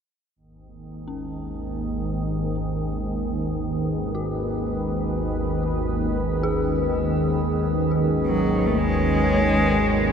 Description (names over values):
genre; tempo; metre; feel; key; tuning
dark ambient drone; free time; none; none; unclear; A4 = 440 Hz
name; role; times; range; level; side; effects
deep dark ambient pad; sustained chords; 3.1-10.1 s; C#4 to D#5; -28 LUFS; left 1 dB; chorus, built-in reverb, shimmer reverb
organ-like drone; drone; 0.8-10.1 s; G#1 to D#2; -23 LUFS; equal; ensemble chorus, built-in reverb
dark detuned synth bell; arpeggios; 1.1-10.1 s; C#4 to G#4; -36 LUFS; left 1 dB; chorus, shimmer reverb, ping-pong delay
backwards swelling texture; texture; 8.9-10.1 s; C#5; -29 LUFS; right 2 dB; built-in reverb, shimmer reverb
rich cello; melody; 8.3-10.1 s; F#3 to A3; -22 LUFS; left 1 dB; shimmer reverb
room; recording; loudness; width
wet huge ambient reverb, RT60 6.9 s; none; -21 LUFS; side -7 dB against mid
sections
0.4-10.1 A section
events
fade-in on ambient pad 0.4-10.1; fade-in on synth bell 0.4-10.1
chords
0.4 G#m